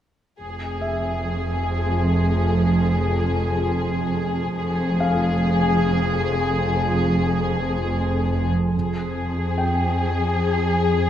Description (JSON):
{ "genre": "cinematic, suspense film score", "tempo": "free time", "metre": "none", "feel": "none", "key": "F harmonic minor", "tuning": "A4 = 439 Hz", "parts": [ { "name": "warm studio violin section", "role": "melody", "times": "0.4-11.1 s", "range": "Ab4", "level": "-25 LUFS", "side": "left 4 dB", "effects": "none" }, { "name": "rich studio cello section", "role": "bass", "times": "0.4-11.1 s", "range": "F2", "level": "-26 LUFS", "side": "right 2 dB", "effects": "none" }, { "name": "rich studio double bass section", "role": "bass", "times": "0.4-9.5 s", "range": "F1", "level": "-25 LUFS", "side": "right 2 dB", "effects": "none" }, { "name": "organ-like drone", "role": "drone", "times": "1.2-11.1 s", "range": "F2", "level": "-25 LUFS", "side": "equal", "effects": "ensemble chorus, built-in reverb" }, { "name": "warm concert grand piano", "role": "texture", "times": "0.8-11.1 s", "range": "E5 to G5", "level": "-32 LUFS", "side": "left 1 dB", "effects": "none" } ], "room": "wet scoring stage reverb, RT60 1.6 s", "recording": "dark, warm production", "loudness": "-19 LUFS", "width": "side -10 dB against mid", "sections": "0.4-8.7 A section; 8.7-11.1 B section", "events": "none", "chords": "0.4 Fm" }